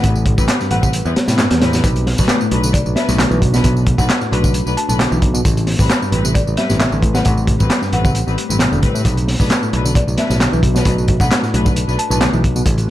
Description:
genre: breakbeat, breaks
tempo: 133 BPM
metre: 4/4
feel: straight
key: B phrygian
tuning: A4 = 437 Hz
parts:
  - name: buzzing marimba with medium mallets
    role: melody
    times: 0.0-12.2 s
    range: D5 to A5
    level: -26 LUFS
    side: left 1 dB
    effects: old record sound, dub echo
  - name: dark analog pad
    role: sustained chords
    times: 0.0-12.9 s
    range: A3 to C5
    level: -27 LUFS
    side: equal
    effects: chorus, phaser, sidechain pumping
  - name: barky reed electric piano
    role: riff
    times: 0.0-12.9 s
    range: G2 to E3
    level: -22 LUFS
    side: equal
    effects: tube saturation
  - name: muted studio string section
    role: stabs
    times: 0.0-12.2 s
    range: G3 to B4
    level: -25 LUFS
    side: left 4 dB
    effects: dub echo
  - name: picked electric bass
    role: bass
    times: 0.0-12.9 s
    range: E1 to A2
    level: -18 LUFS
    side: equal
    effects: none
  - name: crunchy breakbeat drum kit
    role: drums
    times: 0.0-12.9 s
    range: hi-hat, kick drum, snare drum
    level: -17 LUFS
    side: equal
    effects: none
  - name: electronic tambourine and handclaps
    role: drums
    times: 0.0-12.9 s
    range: none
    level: -23 LUFS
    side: equal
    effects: overdrive
room: light reverb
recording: dark, warm production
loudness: -13 LUFS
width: side -14 dB against mid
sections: 0.0-12.9 A section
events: none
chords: 0.0 Am9; 1.8 Bm7; 5.4 Am9; 9.1 Bm7

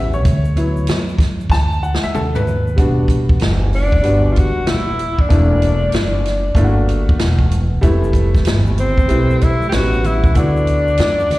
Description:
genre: hip hop, jazz-hop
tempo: 95 BPM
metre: 4/4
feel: swing 64% on 16ths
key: unclear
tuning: A4 = 440 Hz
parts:
  - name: clear concert grand piano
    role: accompaniment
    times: 0.0-11.3 s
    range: F#3 to A5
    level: -22 LUFS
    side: equal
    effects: slapback echo
  - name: upright bass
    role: bass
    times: 0.0-11.4 s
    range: Eb1 to F#2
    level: -17 LUFS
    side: equal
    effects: none
  - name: egg shaker and congas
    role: percussion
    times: 0.1-2.8, 7.8-11.4 s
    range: none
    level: -29 LUFS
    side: right 2 dB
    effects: slapback echo
  - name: open jazz drum kit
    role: drums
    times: 0.2-11.4 s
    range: hi-hat, kick drum, snare drum, toms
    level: -17 LUFS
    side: equal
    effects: none
  - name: breathy tenor saxophone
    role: melody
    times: 3.7-11.4 s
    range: C4 to G4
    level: -19 LUFS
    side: left 1 dB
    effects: slapback echo
room: small room ambience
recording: live gig heard through the venue's PA, recital hall reverb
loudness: -13 LUFS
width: side -18 dB against mid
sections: 0.0-2.8 A section; 2.8-11.4 B section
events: grand piano solo 0.0-2.8; drum fill 1.5-2.8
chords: 0.3 D6; 2.8 Em9; 5.3 F#7alt/E; 7.8 Fmaj9#11; 9.7 A13; 10.4 D6

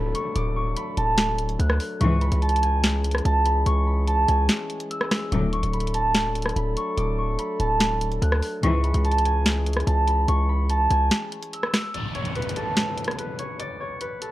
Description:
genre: hip hop, trap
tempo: 145 BPM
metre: 4/4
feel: half-time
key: C# phrygian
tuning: A4 = 439 Hz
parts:
  - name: concert harp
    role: melody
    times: 0.0-14.3 s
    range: A4 to F#6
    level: -26 LUFS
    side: right 1 dB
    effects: low-pass filter
  - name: mellow French horn section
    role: sustained chords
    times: 0.0-11.9 s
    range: E3 to A4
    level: -31 LUFS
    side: left 2 dB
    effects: none
  - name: distorted 808-style bass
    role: bass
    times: 0.0-11.1 s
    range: D1 to D2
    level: -23 LUFS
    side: equal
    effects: distortion
  - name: downlifter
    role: sound effects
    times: 0.0-2.0, 11.9-14.3 s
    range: none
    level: -34 LUFS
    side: left 1 dB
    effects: none
  - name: trap drum kit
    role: drums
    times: 0.1-14.3 s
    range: hi-hat, rim click, snare drum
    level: -26 LUFS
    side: equal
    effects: none
  - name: dark symphonic string section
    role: stabs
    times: 2.0-2.3, 5.3-5.6, 8.6-8.9 s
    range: C#2 to F#3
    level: -26 LUFS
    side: left 2 dB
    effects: none
room: little or no reverb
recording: worn, warbling old tape, cassette tape, warbly pitch drift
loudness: -21 LUFS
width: side -15 dB against mid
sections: 0.0-11.9 A section; 11.9-14.3 B section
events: break 4.5-5.3, 11.1-11.9, 11.9-14.3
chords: 0.0 D; 2.0 C#m; 5.3 D; 8.6 C#m; 11.9 N.C.

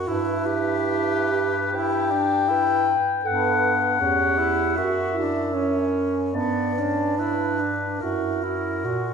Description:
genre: classical, lyrical piece for single-reed quartet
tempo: 68-82 BPM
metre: 4/4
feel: rubato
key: unclear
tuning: A4 = 441 Hz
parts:
  - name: warm alto saxophone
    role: second line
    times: 0.0-9.1 s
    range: B3 to B4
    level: -28 LUFS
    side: right 7 dB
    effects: none
  - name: clear tenor saxophone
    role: accompaniment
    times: 0.0-9.1 s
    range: B3 to G4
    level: -27 LUFS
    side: right 1 dB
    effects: none
  - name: clear bass clarinet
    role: bass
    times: 0.0-9.1 s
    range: E2 to A#2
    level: -28 LUFS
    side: right 3 dB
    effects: none
  - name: warm clarinet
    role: melody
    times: 0.1-9.1 s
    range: A#4 to G5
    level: -24 LUFS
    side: left 6 dB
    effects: none
room: wet scoring stage reverb, RT60 1.6 s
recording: recorded in a church or concert hall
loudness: -20 LUFS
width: side -6 dB against mid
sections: 0.0-9.1 A section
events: none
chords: 0.1 Em/G; 3.3 Em69; 4.8 F#5; 6.4 G; 8.0 F#7

